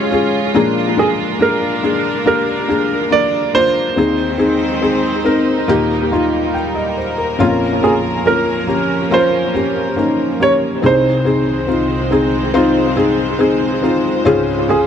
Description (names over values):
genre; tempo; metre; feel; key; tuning
pop; 70 BPM; 4/4; straight; Ab major; A4 = 440 Hz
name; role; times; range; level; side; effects
felt-muted upright piano; accompaniment; 0.0-14.9 s; Bb1 to G5; -15 LUFS; left 2 dB; dub echo
warm studio string section; sustained chords; 0.0-14.9 s; C2 to Db5; -21 LUFS; right 3 dB; none
clear grand piano; melody; 1.0-14.8 s; Ab4 to D5; -17 LUFS; right 4 dB; dub echo
room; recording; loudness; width
moderate plate reverb, RT60 3.5 s; echo-heavy mix; -13 LUFS; side -8 dB against mid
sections
0.0-14.9 A section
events
none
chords
0.0 Db/Ab; 0.5 Bb7; 4.0 Ab/Eb; 5.7 Eb; 7.4 Bbm; 10.8 Ab/C; 14.3 Db